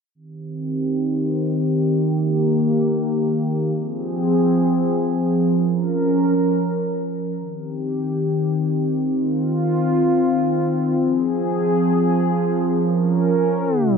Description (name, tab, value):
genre	hip hop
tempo	free time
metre	none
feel	none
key	C phrygian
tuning	A4 = 439 Hz
part	warm analog pad	sustained chords	0.1-14.0 s	Eb3 to Bb4	-18 LUFS	equal	chorus, low-pass filter
room	wet lush hall reverb, RT60 2.3 s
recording	dreamy mix soaked in reverb, tape stop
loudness	-18 LUFS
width	side -6 dB against mid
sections	0.1-14.0 A section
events	filter sweep on analog synth pad 0.1-14.0; tape stop 13.7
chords	0.1 Cm; 3.8 Fm; 5.6 Bbm; 7.4 Cm; 11.0 Fm; 12.8 Bbm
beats	free time